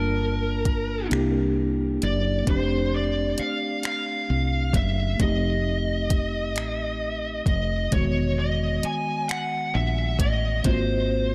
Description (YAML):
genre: slow six-eight R&B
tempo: 44 BPM (dotted quarters)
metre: 6/8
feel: straight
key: unclear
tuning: A4 = 440 Hz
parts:
  - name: high-gain lead guitar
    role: melody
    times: 0.0-11.3 s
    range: Bb4 to G#5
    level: -30 LUFS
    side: equal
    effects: distortion, diffuse ambient delay
  - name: mellow tine electric piano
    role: accompaniment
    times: 0.0-11.3 s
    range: D#3 to A5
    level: -31 LUFS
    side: equal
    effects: none
  - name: woody fretless electric bass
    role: bass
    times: 0.0-11.3 s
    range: E1 to C2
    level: -28 LUFS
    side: equal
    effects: none
  - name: smooth R&B drum kit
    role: drums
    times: 0.7-10.9 s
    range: finger snaps, hi-hat, kick drum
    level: -28 LUFS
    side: equal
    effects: none
room: moderate plate reverb, RT60 2.9 s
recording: dreamy mix soaked in reverb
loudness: -25 LUFS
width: mono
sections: 0.0-11.3 A section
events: none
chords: 0.0 Gm7; 1.1 C7; 2.5 F6; 5.2 F9; 7.9 Emaj9; 10.6 G#13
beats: 1.10 | 2.47 3.83 | 5.19 6.56 | 7.92 9.29 | 10.65